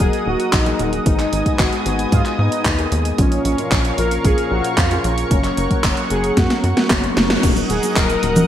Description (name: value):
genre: italo disco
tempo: 113 BPM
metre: 4/4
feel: straight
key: Eb minor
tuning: A4 = 441 Hz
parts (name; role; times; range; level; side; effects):
- analog synth brass; melody; 0.0-8.5 s; Db4 to Bb4; -22 LUFS; equal; chorus, digital delay
- lush unison pad; sustained chords; 0.0-8.5 s; Cb4 to Eb6; -25 LUFS; right 1 dB; chorus
- dark concert grand piano; stabs; 0.0-8.5 s; Ab2 to Bb4; -24 LUFS; left 4 dB; none
- tight sequencer bass; bass; 0.0-8.4 s; Eb1 to Ab2; -21 LUFS; equal; none
- electronic kick drum; drums; 0.0-8.1 s; none; -18 LUFS; equal; none
- house drum kit; drums; 0.0-8.5 s; cabasa, congas, crash cymbal, handclaps, hi-hat, snare drum; -20 LUFS; equal; gated reverb
room: moderate lush hall reverb, RT60 2.2 s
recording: bright 1980s-style digital production, vinyl crackle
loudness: -15 LUFS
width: side -10 dB against mid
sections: 0.0-7.4 A section; 7.4-8.5 B section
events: drum fill 6.4-7.4; band accent 7.3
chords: 0.0 Ebm; 1.1 Abm; 3.2 Bbm; 5.3 Gb; 7.4 Ebm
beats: 0.00 0.53 | 1.06 1.59 2.12 2.65 | 3.18 3.71 4.25 4.78 | 5.31 5.84 6.37 6.90 | 7.43 7.96